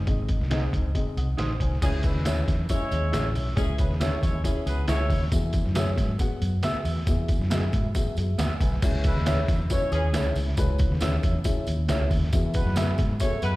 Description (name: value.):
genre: uptempo 1960s-style soul.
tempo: 137 BPM.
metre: 4/4.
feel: straight.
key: C# minor.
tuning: A4 = 440 Hz.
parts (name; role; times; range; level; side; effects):
dark upright piano; accompaniment; 0.0-13.5 s; G#2 to D#6; -32 LUFS; left 4 dB; slapback echo.
vintage muted fingered electric bass; bass; 0.0-13.6 s; G#1 to G#2; -26 LUFS; equal; none.
trip hop sampler-style drum kit; drums; 0.1-13.5 s; crash cymbal, hi-hat, kick drum, snare drum; -26 LUFS; equal; overdrive.
electric guitar through a small old amp; stabs; 0.5-12.9 s; B3 to E5; -34 LUFS; right 3 dB; spring reverb, slapback echo.
dark horn section; second line; 1.8-5.2, 9.1-13.6 s; E3 to C#5; -32 LUFS; equal; slapback echo.
congas; percussion; 1.8-13.3 s; none; -42 LUFS; right 2 dB; none.
tambourine; percussion; 1.8-13.5 s; none; -44 LUFS; right 3 dB; slapback echo.
room: small room ambience.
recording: live gig heard through the venue's PA, recital hall reverb.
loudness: -22 LUFS.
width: side -18 dB against mid.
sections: 0.0-1.8 A section; 1.8-8.8 B section; 8.8-13.6 C section.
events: none.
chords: 0.0 G#; 1.8 C#m; 5.3 Eadd9; 8.8 C#m; 12.3 Eadd9.